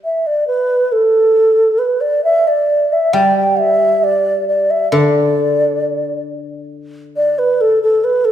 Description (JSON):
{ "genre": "chinese traditional, Chinese chamber ensemble", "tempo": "68 BPM", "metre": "2/4", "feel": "straight", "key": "D zhi mode", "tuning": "A4 = 440 Hz", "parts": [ { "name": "mellow xiao", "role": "melody", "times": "0.0-8.3 s", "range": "A4 to G5", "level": "-12 LUFS", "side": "right 1 dB", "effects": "none" }, { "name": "guzheng", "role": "accompaniment", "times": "0.0, 3.1-7.6 s", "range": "D3 to G3", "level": "-18 LUFS", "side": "left 2 dB", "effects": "none" } ], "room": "moderate recital hall reverb, RT60 1.7 s", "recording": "minimal, uncompressed stereo recording", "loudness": "-12 LUFS", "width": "side -10 dB against mid", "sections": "0.0-8.3 A section", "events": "none", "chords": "none" }